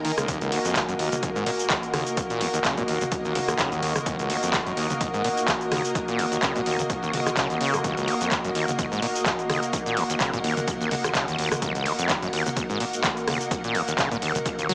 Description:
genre	acid house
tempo	127 BPM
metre	4/4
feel	swing 55% on 16ths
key	Eb minor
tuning	A4 = 439 Hz
part	warm analog pad	sustained chords	0.0-14.7 s	Eb4 to Gb4	-30 LUFS	equal	chorus, sidechain pumping
part	overdriven acid bass	riff	0.0-14.7 s	Eb1 to Gb3	-28 LUFS	equal	distortion, sidechain pumping, tape echo
part	booming analog drum machine	drums	0.0-14.7 s	handclaps, hi-hat, rim click, shaker, toms	-27 LUFS	equal	none
part	granular cloud pad	texture	0.0-14.7 s	Bb3 to Eb6	-30 LUFS	equal	built-in reverb, sidechain pumping
part	electronic kick drum	drums	0.3-14.6 s	none	-32 LUFS	equal	none
room	moderate studio reverb, RT60 0.5 s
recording	heavily compressed radio sound, small speaker sound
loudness	-22 LUFS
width	side -28 dB against mid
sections	0.0-14.7 A section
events	none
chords	0.0 Eb5

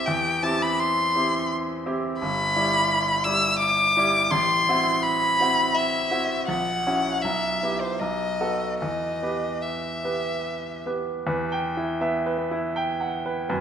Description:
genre	classical, romantic duo for violin and grand piano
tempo	71-87 BPM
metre	3/4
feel	rubato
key	E minor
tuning	A4 = 440 Hz
part	warm violin	melody	0.0-10.9 s	C5 to E6	-22 LUFS	left 1 dB	none
part	bright grand piano	accompaniment	0.0-13.6 s	G1 to G5	-26 LUFS	right 1 dB	none
room	moderate scoring stage reverb, RT60 1.7 s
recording	none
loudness	-22 LUFS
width	side -8 dB against mid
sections	0.0-11.3 A section; 11.3-13.6 B section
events	none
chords	0.1 C/E; 2.2 Em/G; 4.3 F#m7b5/A; 6.5 F#7/A#; 7.2 Em/B; 8.0 B7; 8.8 Em

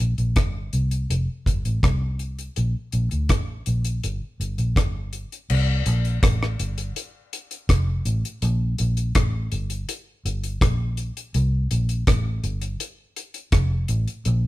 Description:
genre	lovers rock reggae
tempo	82 BPM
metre	4/4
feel	straight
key	F major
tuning	A4 = 442 Hz
part	vintage muted fingered electric bass	bass	0.0-14.5 s	F1 to D2	-22 LUFS	equal	none
part	deep reggae drum kit	drums	0.2-14.4 s	crash cymbal, hi-hat, kick drum, rim click	-23 LUFS	equal	none
room	light reverb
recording	band playing live in one room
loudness	-21 LUFS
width	side -17 dB against mid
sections	0.0-5.5 A section; 5.5-14.5 B section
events	none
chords	none

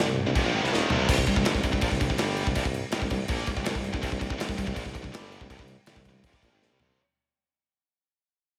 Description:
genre	heavy metal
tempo	163 BPM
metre	4/4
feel	straight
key	C minor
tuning	A4 = 440 Hz
part	heavy high-gain guitar	riff	0.0-7.0 s	C2 to Bb3	-31 LUFS	equal	distortion
part	warm tuba	bass	0.0-7.0 s	D1 to C2	-35 LUFS	equal	none
part	modern studio drum kit	drums	0.0-6.9 s	crash cymbal, kick drum, snare drum, toms	-31 LUFS	equal	none
room	moderate lush hall reverb, RT60 1.8 s, small room ambience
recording	big arena sound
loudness	-27 LUFS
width	mono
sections	0.0-1.1 A section; 1.1-7.0 B section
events	drum fill 0.7-1.1, 6.6-7.0; fade-out 1.1-7.0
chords	0.0 Cm; 1.1 C5

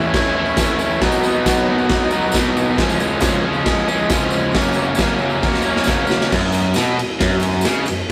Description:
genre	garage rock duo or trio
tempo	136 BPM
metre	4/4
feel	straight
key	unclear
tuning	A4 = 440 Hz
part	crunchy overdriven guitar	riff	0.0-8.1 s	F#2 to E4	-19 LUFS	equal	none
part	tambourine	percussion	0.0-8.1 s	none	-35 LUFS	equal	none
part	raw garage drum kit	drums	0.1-8.0 s	crash cymbal, kick drum, ride cymbal, snare drum	-22 LUFS	equal	none
room	moderate stone room reverb, RT60 1.4 s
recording	rough rehearsal-room recording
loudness	-17 LUFS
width	mono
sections	0.0-6.3 A section; 6.3-8.1 B section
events	drum fill 5.4-6.3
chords	0.0 A; 1.0 B; 2.8 C#; 4.5 F#; 6.3 F#5

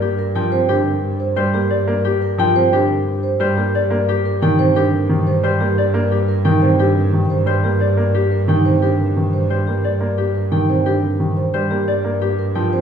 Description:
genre	classical, minimalist pattern music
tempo	177 BPM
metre	6/4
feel	straight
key	unclear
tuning	A4 = 441 Hz
part	concert harp	melody	0.0-12.8 s	G4 to G5	-21 LUFS	left 6 dB	none
part	warm grand piano	accompaniment	0.0-12.8 s	C3 to Bb3	-21 LUFS	equal	none
part	rich double bass	bass	0.0-12.8 s	G2	-20 LUFS	right 2 dB	none
part	vibraphone with soft mallets	arpeggios	0.2-12.8 s	Eb4 to C5	-22 LUFS	right 6 dB	none
room	wet recital hall reverb, RT60 1.8 s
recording	heard from further back in the room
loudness	-15 LUFS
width	side -8 dB against mid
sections	0.0-12.8 A section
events	none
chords	0.0 Gm7; 3.4 Cm7/G; 11.5 Gm7

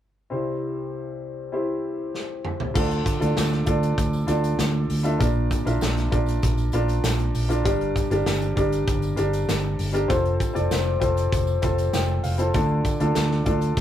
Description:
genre	piano-driven pop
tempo	98 BPM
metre	4/4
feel	straight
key	D minor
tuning	A4 = 443 Hz
part	warm grand piano	accompaniment	0.3-13.8 s	C2 to A5	-25 LUFS	left 1 dB	none
part	modern studio drum kit	drums	2.1-13.8 s	crash cymbal, hi-hat, kick drum, snare drum, toms	-26 LUFS	equal	none
part	fingered electric bass	bass	2.8-13.8 s	F1 to D2	-24 LUFS	equal	none
part	tambourine	percussion	2.8-13.8 s	none	-44 LUFS	right 2 dB	none
room	wet booth ambience, RT60 0.2 s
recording	rough rehearsal-room recording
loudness	-21 LUFS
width	side -11 dB against mid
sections	0.3-2.8 A section; 2.8-13.8 B section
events	drum fill 2.1-2.8; grand piano fill 11.3-12.5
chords	0.3 C; 2.8 Dm; 5.2 Bb; 7.7 Gm; 10.1 F; 12.5 Dm

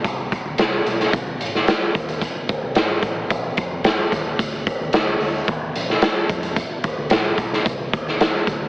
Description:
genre	uptempo 1960s-style soul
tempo	110 BPM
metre	4/4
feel	straight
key	unclear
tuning	A4 = 440 Hz
part	vintage muted fingered electric bass	bass	0.0-8.7 s	Ab1 to F2	-33 LUFS	equal	none
part	raw garage drum kit	drums	0.0-8.6 s	hi-hat, kick drum, snare drum	-18 LUFS	equal	none
room	moderate club reverb, RT60 0.9 s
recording	heavily compressed radio sound, multiband compression, AM radio sound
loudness	-18 LUFS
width	side -28 dB against mid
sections	0.0-8.7 A section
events	none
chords	none

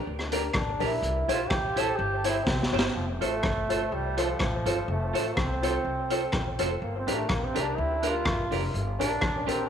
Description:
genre	ska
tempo	124 BPM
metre	4/4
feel	swing 54% on 8ths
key	F major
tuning	A4 = 440 Hz
part	dark upright piano	stabs	0.1-9.6 s	D4 to C5	-33 LUFS	left 8 dB	tape echo
part	upright bass	bass	0.1-9.7 s	F1 to D2	-33 LUFS	left 1 dB	none
part	raw garage drum kit	drums	0.2-9.6 s	hi-hat, kick drum, rim click, snare drum	-30 LUFS	equal	none
part	semi-hollow electric guitar	accompaniment	0.3-9.6 s	D4 to C5	-33 LUFS	right 10 dB	spring reverb
part	bright trombone	melody	0.5-9.7 s	F3 to A4	-30 LUFS	right 1 dB	tape echo
room	moderate echo chamber reverb, RT60 1.3 s, small room ambience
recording	1960s-style stereo with parts hard left and right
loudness	-25 LUFS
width	side -8 dB against mid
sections	0.0-3.0 A section; 3.0-9.7 A section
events	trombone solo 0.0-3.0, 3.0-9.7; drum fill 2.5-3.0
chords	0.0 Gm; 1.0 C; 3.0 F; 6.8 Gm

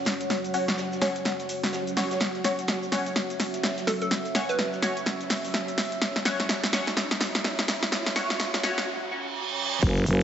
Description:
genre	bass house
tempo	126 BPM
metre	4/4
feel	swing 60% on 16ths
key	unclear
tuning	A4 = 441 Hz
part	deep dark ambient pad	sustained chords	0.0-10.2 s	F#3 to F#5	-33 LUFS	right 1 dB	chorus, built-in reverb, sidechain pumping
part	deep dark ambient pad	texture	0.0-8.9 s	F#4 to F#5	-39 LUFS	right 2 dB	chorus, built-in reverb, sidechain pumping
part	big-room dance drum kit	drums	0.1-10.2 s	crash cymbal, hi-hat, shaker, snare drum	-27 LUFS	equal	none
part	oversized low-tuned drum kit	drums	0.1-10.2 s	hi-hat, snare drum	-40 LUFS	right 1 dB	none
part	band-passed chord stab	stabs	0.5-8.8 s	C#4 to C#5	-32 LUFS	left 1 dB	phaser, analog chorus, cassette tape, sidechain pumping, digital delay
part	riser, reverse cymbal and impact	sound effects	4.8-10.2 s	none	-34 LUFS	right 3 dB	none
part	hollow square pluck	melody	3.9-4.6 s	A4 to B4	-31 LUFS	right 2 dB	chorus, digital delay
part	growling FM bass	bass	9.8-10.2 s	F#1	-22 LUFS	equal	sidechain pumping
part	electronic kick drum	drums	9.8-9.9 s	none	-24 LUFS	equal	none
room	wet lush hall reverb, RT60 1.9 s, digital ambience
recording	high-pass filter, nothing above 7.9 kHz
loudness	-24 LUFS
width	side -9 dB against mid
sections	0.0-9.8 A section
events	build-up 0.0-9.8; drum fill 0.0-8.9; filter sweep on synth stab 0.0-9.8; filter sweep 0.0-9.8; break 8.9-9.8; reverse cymbal 8.9-9.8; impact 9.8-10.2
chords	0.0 F#5

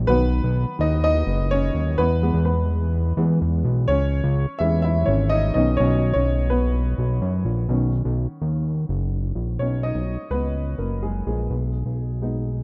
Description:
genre	piano-driven pop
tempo	126 BPM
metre	4/4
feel	straight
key	B major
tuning	A4 = 440 Hz
part	warm upright piano	accompaniment	0.0-12.6 s	D#3 to E5	-26 LUFS	equal	none
part	fat analog bass	bass	0.0-12.6 s	F#1 to F#2	-24 LUFS	equal	none
room	small room ambience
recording	rough home demo mix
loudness	-22 LUFS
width	mono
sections	0.0-7.7 A section; 7.7-9.6 B section; 9.6-12.6 C section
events	upright piano solo 0.0-7.7, 7.7-9.6, 9.6-12.6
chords	0.1 B; 2.0 E; 3.9 C#m; 5.6 Badd9; 11.5 G#m/B

